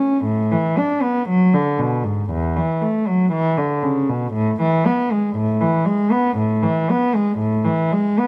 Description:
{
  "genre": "classical, baroque-style suite movement for unaccompanied cello",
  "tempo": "59 BPM",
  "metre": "4/4",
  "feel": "rubato",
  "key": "A major",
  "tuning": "A4 = 436 Hz",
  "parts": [
    { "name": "warm cello", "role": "solo", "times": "0.0-8.3 s", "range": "E2 to D4", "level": "-19 LUFS", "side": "equal", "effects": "none" }
  ],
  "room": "light reverb",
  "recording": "none",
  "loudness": "-19 LUFS",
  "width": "mono",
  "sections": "0.0-8.3 A section",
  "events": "none",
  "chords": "none"
}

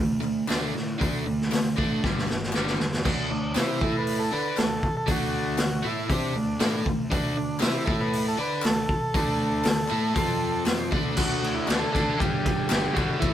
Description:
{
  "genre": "garage rock duo or trio",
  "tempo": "118 BPM",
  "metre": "4/4",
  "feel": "straight",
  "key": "unclear",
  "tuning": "A4 = 441 Hz",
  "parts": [
    { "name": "overdriven electric guitar", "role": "riff", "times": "0.0-13.3 s", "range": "G2 to D5", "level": "-28 LUFS", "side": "right 1 dB", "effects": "none" },
    { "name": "fuzz picked electric bass", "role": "bass", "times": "0.0-13.3 s", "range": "G1 to D3", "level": "-33 LUFS", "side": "equal", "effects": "overdrive" },
    { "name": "group handclap", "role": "percussion", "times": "0.2-12.8 s", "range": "none", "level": "-38 LUFS", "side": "left 4 dB", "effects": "none" },
    { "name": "raw garage drum kit", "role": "drums", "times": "0.5-13.3 s", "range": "crash cymbal, hi-hat, kick drum, ride cymbal, snare drum", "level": "-27 LUFS", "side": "equal", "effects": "none" },
    { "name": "combo organ", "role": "melody", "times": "3.3-13.3 s", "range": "D4 to B4", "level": "-29 LUFS", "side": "equal", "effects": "none" }
  ],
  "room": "moderate studio reverb, RT60 0.7 s",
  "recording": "band playing live in one room",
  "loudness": "-23 LUFS",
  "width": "side -11 dB against mid",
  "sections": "0.0-3.0 A section; 3.0-11.2 B section; 11.2-13.3 C section",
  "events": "drum fill 2.0-3.0",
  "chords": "0.0 D5; 2.0 G5; 3.0 D5; 3.8 A5; 4.3 D; 7.9 A5; 8.4 D5; 10.2 F5; 10.9 D5; 12.2 G5"
}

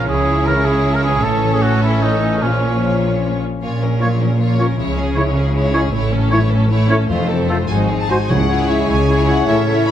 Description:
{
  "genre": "cinematic",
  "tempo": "103 BPM (dotted quarters)",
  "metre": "6/8",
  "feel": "straight",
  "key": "Bb minor",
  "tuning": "A4 = 440 Hz",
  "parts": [
    { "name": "rich chamber violin section", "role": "melody", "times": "0.0-9.9 s", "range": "Ab4 to B5", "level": "-28 LUFS", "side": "left 1 dB", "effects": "none" },
    { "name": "clear symphonic violin section", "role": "second line", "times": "0.0-9.9 s", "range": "Bb3 to C#5", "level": "-27 LUFS", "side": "left 1 dB", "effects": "none" },
    { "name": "rich symphonic viola section", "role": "accompaniment", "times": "0.0-9.9 s", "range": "Ab3 to A4", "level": "-25 LUFS", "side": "equal", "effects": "none" },
    { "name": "concert harp", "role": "arpeggios", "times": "0.0-9.9 s", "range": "F2 to Db5", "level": "-24 LUFS", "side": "left 8 dB", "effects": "none" },
    { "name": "warm trumpet", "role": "stabs", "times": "0.0-9.9 s", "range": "Db4 to Db5", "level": "-22 LUFS", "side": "right 2 dB", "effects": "none" },
    { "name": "clear symphonic double bass section", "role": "bass", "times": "0.0-9.9 s", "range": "F1 to Db2", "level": "-20 LUFS", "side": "right 2 dB", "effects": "none" },
    { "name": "rich symphonic cello section", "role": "bass", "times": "0.0-9.9 s", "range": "F2 to Db3", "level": "-20 LUFS", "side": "right 1 dB", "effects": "none" },
    { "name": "dark French horn section", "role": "sustained chords", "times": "0.5-9.9 s", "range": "E3 to Gb4", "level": "-24 LUFS", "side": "left 4 dB", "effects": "none" },
    { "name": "warm clarinet", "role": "second line", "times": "4.0-9.9 s", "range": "E4 to Gb4", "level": "-26 LUFS", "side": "left 1 dB", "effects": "none" },
    { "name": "warm oboe", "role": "second line", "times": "4.0-9.9 s", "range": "A4 to C#5", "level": "-27 LUFS", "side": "equal", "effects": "none" },
    { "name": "timpani", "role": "percussion", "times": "7.1-8.9 s", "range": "F2 to C#3", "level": "-25 LUFS", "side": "right 1 dB", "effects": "none" },
    { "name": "hollow large flute ensemble", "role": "second line", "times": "7.7-9.9 s", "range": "E5 to B5", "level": "-24 LUFS", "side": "left 2 dB", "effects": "none" }
  ],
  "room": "light reverb",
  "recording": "close, detailed microphones",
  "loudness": "-14 LUFS",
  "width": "side -10 dB against mid",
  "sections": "0.0-3.6 A section; 3.6-8.3 B section; 8.3-9.9 C section",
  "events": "none",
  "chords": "0.1 Dbm; 1.2 A; 2.4 Bbm; 4.8 Dbm; 5.9 A; 7.1 F; 7.7 Ab7; 8.3 C#m"
}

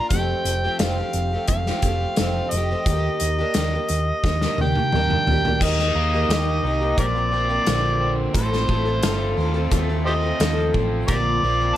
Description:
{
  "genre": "folk rock and heartland rock",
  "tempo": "87 BPM",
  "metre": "4/4",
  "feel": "straight",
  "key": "F mixolydian",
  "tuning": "A4 = 440 Hz",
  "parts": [
    { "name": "overdriven harmonica", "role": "melody", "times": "0.0-11.8 s", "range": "G4 to G5", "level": "-24 LUFS", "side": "equal", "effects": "none" },
    { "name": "picked plugged-in twelve-string acoustic guitar", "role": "accompaniment", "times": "0.0-11.8 s", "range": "F2 to A4", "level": "-26 LUFS", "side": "left 1 dB", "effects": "none" },
    { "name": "hollow-body short-scale fingered electric bass", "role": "bass", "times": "0.1-11.7 s", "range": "F1 to Eb2", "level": "-24 LUFS", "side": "equal", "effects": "none" },
    { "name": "loose indie drum kit", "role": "drums", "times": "0.1-11.2 s", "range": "crash cymbal, hi-hat, kick drum, snare drum, toms", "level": "-24 LUFS", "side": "equal", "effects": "none" },
    { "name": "crunchy overdriven guitar", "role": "riff", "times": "5.6-11.8 s", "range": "A2 to G4", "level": "-28 LUFS", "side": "right 1 dB", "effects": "none" }
  ],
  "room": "light reverb",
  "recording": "none",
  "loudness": "-19 LUFS",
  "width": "side -12 dB against mid",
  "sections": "0.0-5.6 A section; 5.6-11.8 B section",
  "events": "drum fill 4.2-5.6",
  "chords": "0.1 Fadd9; 2.9 Ebmaj7; 5.6 Eb; 7.0 Bbadd9; 8.4 F; 11.1 Bbadd9"
}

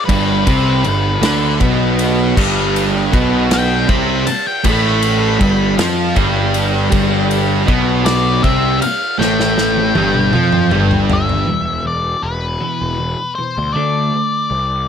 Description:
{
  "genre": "quiet-loud alternative rock",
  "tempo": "53 BPM (dotted quarters)",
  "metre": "6/8",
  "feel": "straight",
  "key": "G mixolydian",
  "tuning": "A4 = 440 Hz",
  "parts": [
    { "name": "octave-fuzz lead guitar", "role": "melody", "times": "0.0-14.9 s", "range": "B4 to B5", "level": "-20 LUFS", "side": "left 4 dB", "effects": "distortion" },
    { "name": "fuzz guitar", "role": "riff", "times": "0.1-11.5 s", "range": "G2 to F4", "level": "-21 LUFS", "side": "equal", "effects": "distortion" },
    { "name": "sludgy distorted guitar", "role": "riff", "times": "0.1-11.5 s", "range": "G2 to F4", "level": "-19 LUFS", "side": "right 10 dB", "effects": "overdrive" },
    { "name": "thick fuzz guitar", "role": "riff", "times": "0.1-11.5 s", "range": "G2 to F4", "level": "-20 LUFS", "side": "left 8 dB", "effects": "distortion" },
    { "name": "fuzz picked electric bass", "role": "bass", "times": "0.1-14.9 s", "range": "E1 to F2", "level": "-20 LUFS", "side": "equal", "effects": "overdrive" },
    { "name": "loose indie drum kit", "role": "drums", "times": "0.1-11.5 s", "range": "crash cymbal, kick drum, ride cymbal, snare drum, toms", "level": "-19 LUFS", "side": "equal", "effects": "none" },
    { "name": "twelve-string electric guitar", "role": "arpeggios", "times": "11.5-14.5 s", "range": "E2 to D4", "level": "-23 LUFS", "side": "right 2 dB", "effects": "none" }
  ],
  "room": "small room ambience",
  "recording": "none",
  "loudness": "-13 LUFS",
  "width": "side -8 dB against mid",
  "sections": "0.0-11.5 A section; 11.5-14.9 B section",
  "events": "drum fill 9.2-11.5",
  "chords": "0.0 G; 11.5 E5; 13.8 D5"
}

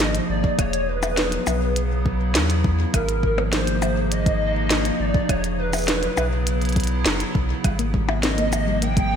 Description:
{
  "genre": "IDM",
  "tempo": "102 BPM",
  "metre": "4/4",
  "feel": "straight",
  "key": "unclear",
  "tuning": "A4 = 439 Hz",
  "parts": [
    { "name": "warbly nostalgic lead", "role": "melody", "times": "0.0-9.2 s", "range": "Bb4 to G5", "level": "-26 LUFS", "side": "equal", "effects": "ensemble chorus, digital delay, shimmer reverb" },
    { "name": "warbly tape-like pad", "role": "sustained chords", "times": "0.0-9.2 s", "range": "C3 to G#4", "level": "-26 LUFS", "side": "equal", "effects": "chorus, built-in reverb, shimmer reverb" },
    { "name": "warm sub bass", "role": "bass", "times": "0.0-9.2 s", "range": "E1 to E2", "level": "-24 LUFS", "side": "equal", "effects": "tube saturation" },
    { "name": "glitchy drum kit", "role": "drums", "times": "0.0-9.1 s", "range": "hi-hat, percussion blips, rim click, shaker, snare drum", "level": "-25 LUFS", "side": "equal", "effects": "gated reverb" },
    { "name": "electronic kick drum", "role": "drums", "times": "0.4-9.1 s", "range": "none", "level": "-22 LUFS", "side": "equal", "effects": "none" },
    { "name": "thumb-piano-like synth pluck", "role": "arpeggios", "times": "7.6-9.1 s", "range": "G3 to C4", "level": "-27 LUFS", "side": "left 4 dB", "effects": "chorus, ping-pong delay, shimmer reverb" }
  ],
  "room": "moderate lush hall reverb, RT60 2.4 s",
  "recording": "bright 1980s-style digital production",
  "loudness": "-19 LUFS",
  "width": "side -8 dB against mid",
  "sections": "0.0-9.2 A section",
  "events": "none",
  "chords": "0.0 Abadd9; 0.6 Eadd9; 2.9 Abadd9; 5.3 Eadd9; 7.6 Abmaj9"
}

